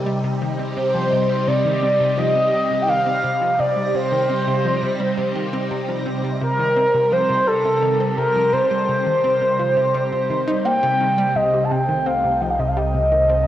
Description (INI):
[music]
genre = ambient, sequencer-driven space music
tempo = 85 BPM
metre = 4/4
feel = straight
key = C dorian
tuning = A4 = 442 Hz
[part]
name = phased string machine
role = sustained chords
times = 0.0-13.5 s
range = C3 to Eb4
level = -24 LUFS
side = equal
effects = ensemble chorus, phaser, cassette tape, shimmer reverb
[part]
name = analog pluck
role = riff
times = 0.0-13.4 s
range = C3 to Eb4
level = -27 LUFS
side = equal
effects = chorus, phaser, cassette tape, analog delay
[part]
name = bubbling stepped-filter texture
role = texture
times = 0.3-13.5 s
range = A3 to Bb6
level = -36 LUFS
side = right 1 dB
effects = chorus, built-in reverb, cassette tape, shimmer reverb
[part]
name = mellow horn-like synth lead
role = melody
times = 0.8-13.5 s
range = A4 to A5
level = -18 LUFS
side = equal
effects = chorus, cassette tape, shimmer reverb, analog delay
[part]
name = fat analog bass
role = bass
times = 11.4-13.5 s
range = C2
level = -26 LUFS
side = equal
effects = none
[sound]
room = wet spring reverb, RT60 1.4 s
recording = home recording on cassette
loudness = -17 LUFS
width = side -12 dB against mid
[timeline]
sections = 0.0-11.4 A section; 11.4-13.5 B section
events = fade-in on synth texture 0.0-11.4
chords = 0.0 Cm7; 11.4 Cm